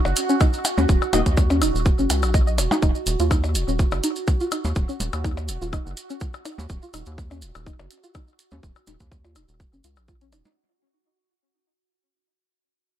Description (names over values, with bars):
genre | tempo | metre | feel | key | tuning
minimal techno | 124 BPM | 4/4 | swing 54% on 16ths | Eb minor | A4 = 440 Hz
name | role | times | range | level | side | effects
pulsing gated texture | texture | 0.0-10.6 s | Gb4 | -30 LUFS | right 4 dB | chorus, built-in reverb, sidechain pumping
rubbery square bass | bass | 0.1-10.4 s | Eb1 to Eb2 | -25 LUFS | equal | sidechain pumping
maracas | percussion | 0.1-10.5 s | none | -32 LUFS | right 2 dB | none
percussion blips | percussion | 0.1-10.5 s | none | -29 LUFS | left 2 dB | overdrive, tape echo
electronic hi-hat | drums | 0.2-10.4 s | none | -29 LUFS | right 1 dB | none
string-like resonator pluck | riff | 0.3-10.5 s | Db4 to Eb5 | -26 LUFS | equal | analog chorus, cassette tape, sidechain pumping, tape echo
electronic kick drum | drums | 0.4-10.2 s | none | -20 LUFS | equal | none
wavetable chord stab | stabs | 1.1-1.2 s | Bb3 to Eb5 | -28 LUFS | left 4 dB | tape echo
room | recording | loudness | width
digital ambience | none | -19 LUFS | side -11 dB against mid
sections
0.0-10.6 A section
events
fade-out 0.0-10.6; filter sweep on synth pluck 0.0-10.6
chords
0.0 Ebm